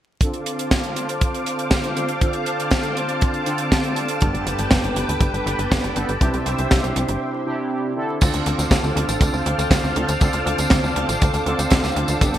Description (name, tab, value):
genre	italo disco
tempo	120 BPM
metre	4/4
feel	straight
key	D dorian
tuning	A4 = 440 Hz
part	string machine, full ensemble	sustained chords	0.2-12.4 s	B4 to D6	-25 LUFS	equal	ensemble chorus
part	analog synth brass	stabs	0.2-12.4 s	G2 to A4	-25 LUFS	right 1 dB	chorus, vintage 12-bit sampler grit, digital delay
part	kick drum	drums	0.2-12.3 s	none	-19 LUFS	equal	studio reverb
part	tight funk drum kit	drums	0.2-12.4 s	crash cymbal, hi-hat, snare drum, tambourine	-23 LUFS	right 1 dB	studio reverb, gated reverb
part	tight sequencer bass	bass	4.2-12.4 s	G1 to D2	-24 LUFS	equal	none
room	moderate plate reverb, RT60 2.2 s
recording	bright 1980s-style digital production, vinyl crackle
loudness	-18 LUFS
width	side -12 dB against mid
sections	0.2-8.2 A section; 8.2-12.4 B section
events	filter sweep on analog polysynth 0.2-8.2; break 7.2-8.2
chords	0.2 Dm7; 4.2 Gadd9; 6.2 Cadd9; 8.2 Dm7